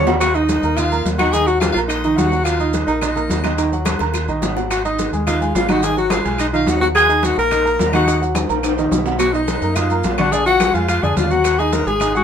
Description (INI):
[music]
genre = Afro-Cuban jazz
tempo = 214 BPM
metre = 4/4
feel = straight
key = Eb minor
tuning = A4 = 439 Hz
[part]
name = warm alto saxophone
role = melody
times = 0.0-12.2 s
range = Eb4 to C#5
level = -19 LUFS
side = left 1 dB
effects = none
[part]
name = warm concert grand piano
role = accompaniment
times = 0.0-12.2 s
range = D3 to Eb6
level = -21 LUFS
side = right 3 dB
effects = none
[part]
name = deep dub fingered electric bass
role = bass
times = 0.0-12.2 s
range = Ab1 to F#2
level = -23 LUFS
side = equal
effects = none
[part]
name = congas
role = percussion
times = 0.1-12.2 s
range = none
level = -25 LUFS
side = left 1 dB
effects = none
[part]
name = cowbell and bongos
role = percussion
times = 0.1-12.2 s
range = none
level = -28 LUFS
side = left 6 dB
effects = none
[part]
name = maracas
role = percussion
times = 0.1-12.2 s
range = none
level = -32 LUFS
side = right 5 dB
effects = none
[part]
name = timbales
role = percussion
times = 0.1-12.2 s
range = none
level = -26 LUFS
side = right 2 dB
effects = none
[part]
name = bright soprano saxophone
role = second line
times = 0.2-12.2 s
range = Eb5 to Bb5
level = -24 LUFS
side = left 5 dB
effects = none
[part]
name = claves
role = percussion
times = 0.2-12.1 s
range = none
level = -31 LUFS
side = left 4 dB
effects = none
[sound]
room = moderate studio reverb, RT60 0.6 s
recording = minimal, uncompressed stereo recording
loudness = -15 LUFS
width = side -8 dB against mid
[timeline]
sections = 0.2-12.2 A section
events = drum fill 0.0, 3.9-4.7, 8.4-9.2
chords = 0.2 Ebm; 4.7 Abm7; 7.0 Ebm; 9.2 Bmaj7; 10.3 Bb7; 11.4 Ebm